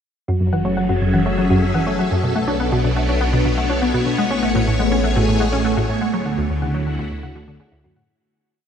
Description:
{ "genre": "ambient, sequencer-driven space music", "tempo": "123 BPM", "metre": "4/4", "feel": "straight", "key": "F# minor", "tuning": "A4 = 440 Hz", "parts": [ { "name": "phased string machine", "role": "sustained chords", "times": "0.3-8.1 s", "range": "A2 to E5", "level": "-20 LUFS", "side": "equal", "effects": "ensemble chorus, phaser" }, { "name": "thumb-piano-like synth pluck", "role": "arpeggios", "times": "0.3-8.0 s", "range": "E4 to F#5", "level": "-27 LUFS", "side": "left 2 dB", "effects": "chorus, auto-pan, ping-pong delay" }, { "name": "resonant blip pluck", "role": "riff", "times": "0.3-8.1 s", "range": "D2 to D4", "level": "-21 LUFS", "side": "equal", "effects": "wide subtle chorus, vintage 12-bit sampler grit, ping-pong delay" }, { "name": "round analog bass", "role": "bass", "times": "0.3-8.1 s", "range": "F#1 to D2", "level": "-25 LUFS", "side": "equal", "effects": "none" } ], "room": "moderate huge ambient reverb, RT60 8.0 s", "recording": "none", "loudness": "-16 LUFS", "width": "side -8 dB against mid", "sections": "0.3-8.1 A section", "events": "fade-out 5.5-8.1", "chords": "0.3 F#m7; 2.2 Bm7; 4.2 Amaj7; 6.1 Dmaj7", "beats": "| 0.28 0.77 1.26 1.75 | 2.23 2.72 3.21 3.70 | 4.18 4.67 5.16 5.65 | 6.14 6.62 7.11 7.60" }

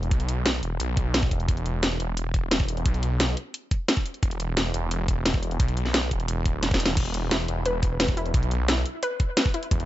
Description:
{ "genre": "dark technical drum and bass", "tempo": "175 BPM", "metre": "4/4", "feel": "straight", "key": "unclear", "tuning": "A4 = 440 Hz", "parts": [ { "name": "snarling distorted saw bass", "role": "bass", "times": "0.0-9.9 s", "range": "E1 to B1", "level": "-26 LUFS", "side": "equal", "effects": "distortion, tube saturation" }, { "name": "drum and bass drum kit", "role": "drums", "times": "0.0-9.9 s", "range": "crash cymbal, hi-hat, snare drum", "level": "-26 LUFS", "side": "equal", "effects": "none" }, { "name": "electronic kick drum", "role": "drums", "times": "0.1-9.8 s", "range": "none", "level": "-24 LUFS", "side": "equal", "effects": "none" }, { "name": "analog pluck", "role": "arpeggios", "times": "7.3-9.6 s", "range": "E4 to B4", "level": "-30 LUFS", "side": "left 1 dB", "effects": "chorus, sidechain pumping, dub echo" } ], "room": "little or no reverb", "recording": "nothing above 7.8 kHz", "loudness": "-23 LUFS", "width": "side -14 dB against mid", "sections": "0.0-9.9 A section", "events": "drum fill 6.6-7.0", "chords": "0.0 E5", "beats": "| 0.11 0.46 0.80 1.14 | 1.49 1.83 2.17 2.51 | 2.86 3.20 3.54 3.88 | 4.23 4.57 4.91 5.26 | 5.60 5.94 6.29 6.63 | 6.97 7.31 7.66 8.00 | 8.34 8.69 9.03 9.37 | 9.71" }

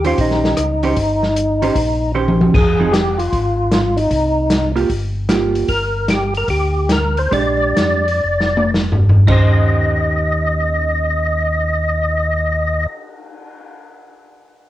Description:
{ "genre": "soul jazz organ trio", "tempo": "107-153 BPM", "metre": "4/4", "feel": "swing 66% on 8ths", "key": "Eb mixolydian", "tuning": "A4 = 440 Hz", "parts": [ { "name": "percussive tonewheel organ", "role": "melody", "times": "0.0-12.9 s", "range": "Eb4 to Eb5", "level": "-18 LUFS", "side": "equal", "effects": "slow rotary speaker, chorus vibrato, cassette tape" }, { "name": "vintage hollow-body jazz guitar", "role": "accompaniment", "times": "0.0-12.9 s", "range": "Eb3 to C5", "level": "-21 LUFS", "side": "right 5 dB", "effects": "cassette tape" }, { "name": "mellow tonewheel organ", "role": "bass", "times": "0.0-12.9 s", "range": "F1 to F2", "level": "-20 LUFS", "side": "left 1 dB", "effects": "slow rotary speaker" }, { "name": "open jazz drum kit", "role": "drums", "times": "0.0-13.6 s", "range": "crash cymbal, cymbal swell, hi-hat, kick drum, rim click, snare drum, toms", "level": "-17 LUFS", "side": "equal", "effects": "cassette tape" } ], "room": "light reverb, small room ambience", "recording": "home recording on cassette", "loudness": "-14 LUFS", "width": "side -14 dB against mid", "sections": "0.0-2.5 A section; 2.5-9.3 B section; 9.3-13.8 C section", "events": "drum fill 2.1-2.5, 8.2-9.3; slowing down 5.7-9.3", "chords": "0.0 Eb6; 2.5 Fm; 4.1 C7sus4; 5.7 Gm; 7.3 Bb6; 9.3 Eb6", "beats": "0.18 0.58 | 0.97 1.36 1.75 2.15 | 2.54 2.93 3.33 3.72 | 4.11 4.50 4.90 5.29 | 5.68 6.08 6.48 6.89 | 7.32 7.77 8.24 8.74 | 9.28 9.84 10.40 10.96 | 11.52 12.08 12.64 13.20" }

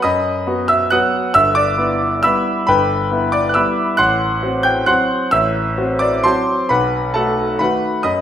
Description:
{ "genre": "classical, piano waltz", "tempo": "135 BPM", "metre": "3/4", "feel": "uneven beats, rubato", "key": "E minor", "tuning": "A4 = 440 Hz", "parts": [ { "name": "bright concert grand piano", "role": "solo", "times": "0.0-8.2 s", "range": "G1 to G6", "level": "-14 LUFS", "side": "equal", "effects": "none" } ], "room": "moderate recital hall reverb, RT60 1.4 s", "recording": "none", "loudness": "-14 LUFS", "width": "side -9 dB against mid", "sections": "0.0-8.2 A section", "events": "none", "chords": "0.0 B; 1.3 Em/G; 4.0 F#dim/A; 6.7 B7", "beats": "| 0.03 0.47 0.92 | 1.35 1.78 2.23 | 2.68 3.11 3.56 | 3.99 4.43 4.88 | 5.33 5.77 6.24 | 6.69 7.14 7.60 | 8.05" }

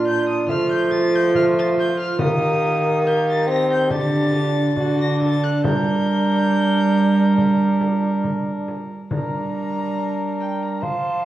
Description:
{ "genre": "classical, renaissance-style consort dance", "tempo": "70 BPM", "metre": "4/4", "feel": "straight", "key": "G minor", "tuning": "A4 = 440 Hz", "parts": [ { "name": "warm violin", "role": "melody", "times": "0.0-11.2 s", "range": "G5 to Bb6", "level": "-28 LUFS", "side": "left 2 dB", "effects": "none" }, { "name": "warm viola", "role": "second line", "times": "0.0-11.2 s", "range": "F4 to C5", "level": "-26 LUFS", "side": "right 1 dB", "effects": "none" }, { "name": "mellow bassoon", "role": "accompaniment", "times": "0.0-11.2 s", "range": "A3 to F4", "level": "-23 LUFS", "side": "equal", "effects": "none" }, { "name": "rich cello", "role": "bass", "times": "0.0-11.2 s", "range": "Bb2 to G3", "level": "-20 LUFS", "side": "right 2 dB", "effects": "none" }, { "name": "frame drum", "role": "percussion", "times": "0.5-11.2 s", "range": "none", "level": "-28 LUFS", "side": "left 2 dB", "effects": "none" } ], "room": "wet recital hall reverb, RT60 1.5 s", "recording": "worn, warbling old tape, cassette tape, warbly pitch drift, small room ambience", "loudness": "-17 LUFS", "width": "side -14 dB against mid", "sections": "0.0-9.1 A section; 9.1-11.2 B section", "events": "none", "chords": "0.5 F; 2.2 Eb; 3.9 Dsus4; 5.6 Gm", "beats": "0.49 1.34 | 2.20 3.05 3.90 4.77 | 5.64 6.51 7.38 8.24 | 9.11 9.97 10.82" }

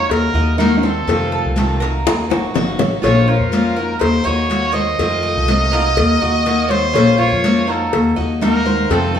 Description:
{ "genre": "latin, Cuban son and guajira", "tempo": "123 BPM", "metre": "4/4", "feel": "straight", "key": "unclear", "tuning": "A4 = 440 Hz", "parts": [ { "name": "bright trumpet", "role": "melody", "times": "0.0-9.2 s", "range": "A4 to Eb5", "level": "-19 LUFS", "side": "right 1 dB", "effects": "none" }, { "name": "nylon-string guitar", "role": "second line", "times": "0.0-9.2 s", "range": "C4 to A4", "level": "-26 LUFS", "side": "right 3 dB", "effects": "none" }, { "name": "picked steel-string acoustic guitar", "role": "accompaniment", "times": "0.0-9.2 s", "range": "C3 to C5", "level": "-21 LUFS", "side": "left 4 dB", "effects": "none" }, { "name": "Cuban tres", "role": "arpeggios", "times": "0.0-9.2 s", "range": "Bb3 to Eb5", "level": "-23 LUFS", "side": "right 2 dB", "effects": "none" }, { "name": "upright bass", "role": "bass", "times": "0.0-9.2 s", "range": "F1 to F2", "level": "-19 LUFS", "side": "equal", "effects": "none" }, { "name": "congas", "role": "percussion", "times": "0.1-9.2 s", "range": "none", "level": "-23 LUFS", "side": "equal", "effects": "none" }, { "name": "cowbell and bongos", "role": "percussion", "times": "0.1-9.1 s", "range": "none", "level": "-22 LUFS", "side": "left 3 dB", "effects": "none" } ], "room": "wet stone room reverb, RT60 1.3 s", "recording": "band playing live in one room, small room ambience", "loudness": "-13 LUFS", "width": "side -8 dB against mid", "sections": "0.0-9.2 A section", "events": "drum fill 2.1-3.0", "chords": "0.1 Ebm; 1.1 F7; 2.1 Ebm; 3.0 Bbmadd9; 4.0 Ebm; 5.0 F7; 6.0 Ebm; 6.9 Bbmadd9; 7.9 Ebm", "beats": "0.10 0.59 | 1.08 1.57 2.06 2.55 | 3.04 3.53 4.01 4.50 | 4.99 5.48 5.97 6.46 | 6.95 7.43 7.92 8.41 | 8.90" }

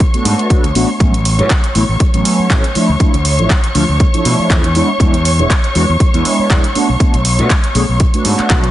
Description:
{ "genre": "filtered disco house", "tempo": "120 BPM", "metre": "4/4", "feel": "swing 55% on 16ths", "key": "unclear", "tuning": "A4 = 435 Hz", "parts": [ { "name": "warm studio string section", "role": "sustained chords", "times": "0.0-8.7 s", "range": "C#5 to C#6", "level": "-20 LUFS", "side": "equal", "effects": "vintage 12-bit sampler grit, sidechain pumping, low-pass filter" }, { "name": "growling fingered electric bass", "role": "bass", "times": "0.0-8.7 s", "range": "E1 to B2", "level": "-16 LUFS", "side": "equal", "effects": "overdrive, sidechain pumping, low-pass filter" }, { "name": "electronic kick drum", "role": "drums", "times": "0.0-8.6 s", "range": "none", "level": "-12 LUFS", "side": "equal", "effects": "overdrive" }, { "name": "house drum kit", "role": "drums", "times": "0.0-8.7 s", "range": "handclaps, hi-hat", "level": "-19 LUFS", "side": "right 1 dB", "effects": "overdrive, sidechain pumping on hats" }, { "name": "mellow synth brass", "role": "accompaniment", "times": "0.1-8.6 s", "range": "F3 to G#4", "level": "-17 LUFS", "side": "right 1 dB", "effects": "chorus, phaser, sidechain pumping, low-pass filter" } ], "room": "light reverb", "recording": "heavily compressed radio sound, multiband compression, nothing above 10.4 kHz", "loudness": "-10 LUFS", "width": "side -14 dB against mid", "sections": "0.0-8.7 A section", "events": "none", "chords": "0.0 Bm7; 1.0 A69; 2.8 Dmadd9; 4.8 E7; 6.8 Bm7", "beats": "0.00 0.50 | 1.00 1.50 2.00 2.50 | 3.00 3.50 4.00 4.50 | 5.00 5.50 6.00 6.50 | 7.00 7.50 8.00 8.50" }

